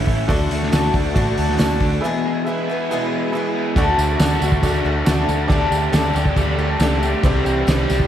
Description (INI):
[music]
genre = folk rock and heartland rock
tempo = 138 BPM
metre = 4/4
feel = straight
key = unclear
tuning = A4 = 440 Hz
[part]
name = picked twelve-string acoustic guitar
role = accompaniment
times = 0.0-8.1 s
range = E2 to G#4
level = -23 LUFS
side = left 3 dB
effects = slapback echo
[part]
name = rich symphonic string section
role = sustained chords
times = 0.0-8.1 s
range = D4 to F#5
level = -30 LUFS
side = equal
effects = none
[part]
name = crunchy overdriven guitar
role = riff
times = 0.0-8.1 s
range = E2 to G4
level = -24 LUFS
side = right 2 dB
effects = slapback echo
[part]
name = vintage muted picked electric bass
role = bass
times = 0.0-8.1 s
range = A1 to D2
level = -22 LUFS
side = equal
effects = none
[part]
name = cloth-damped thuddy drum kit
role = drums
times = 0.1-8.1 s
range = crash cymbal, hi-hat, kick drum, snare drum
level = -20 LUFS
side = equal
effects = none
[part]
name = bright upright piano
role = accompaniment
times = 0.3-8.0 s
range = E4 to B5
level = -28 LUFS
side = right 2 dB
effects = none
[part]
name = tambourine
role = percussion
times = 0.7-8.0 s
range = none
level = -37 LUFS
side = right 5 dB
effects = none
[sound]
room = moderate lush hall reverb, RT60 2.2 s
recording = big arena sound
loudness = -16 LUFS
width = side -10 dB against mid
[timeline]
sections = 0.0-3.8 A section; 3.8-8.1 B section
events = break 2.0-3.8; upright piano fill 2.5-3.8, 6.6-7.2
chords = 0.3 D; 2.0 E; 3.8 D; 5.5 Gsus2/D; 7.2 Cadd9